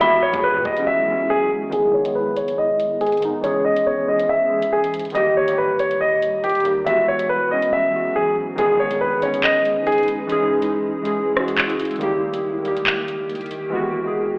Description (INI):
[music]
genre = hip hop, drill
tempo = 140 BPM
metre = 4/4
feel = half-time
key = G# minor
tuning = A4 = 440 Hz
[part]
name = clear upright piano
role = melody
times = 0.0-10.1 s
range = G4 to E5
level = -18 LUFS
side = equal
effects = low-pass filter, digital delay
[part]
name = warbly lo-fi synth keys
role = accompaniment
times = 0.0-14.4 s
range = D#3 to G#4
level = -22 LUFS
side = equal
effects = chorus, low-pass filter
[part]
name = granular cloud pad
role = sustained chords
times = 0.0-14.4 s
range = C#2 to B4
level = -31 LUFS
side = equal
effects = built-in reverb, low-pass filter
[part]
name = drill drum kit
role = drums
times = 0.0-13.6 s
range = handclaps, hi-hat, kick drum, rim click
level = -24 LUFS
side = equal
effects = none
[part]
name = long sustained 808-style bass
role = bass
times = 0.3-0.9 s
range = E1 to B2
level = -40 LUFS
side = equal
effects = none
[part]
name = impact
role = sound effects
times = 8.6-10.3 s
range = none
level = -38 LUFS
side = equal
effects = none
[sound]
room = moderate recital hall reverb, RT60 1.4 s, digital ambience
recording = played on a big sound system in a bare room, large studio reverb, telephone sound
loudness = -17 LUFS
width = side -32 dB against mid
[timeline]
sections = 0.0-1.7 A section; 1.7-8.6 B section; 8.6-14.4 C section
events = break 0.9-1.7, 10.3-14.4; filter sweep 1.7-8.6; drums muted 7.7-8.6; kick muted 8.6-14.4; impact 8.6-10.3; hi-hats muted 13.7-14.4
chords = 0.0 Eadd9; 1.7 G#m; 3.4 C#m; 5.2 D#; 6.9 Eadd9; 8.6 G#m; 10.3 C#m; 12.0 D#; 13.7 Eadd9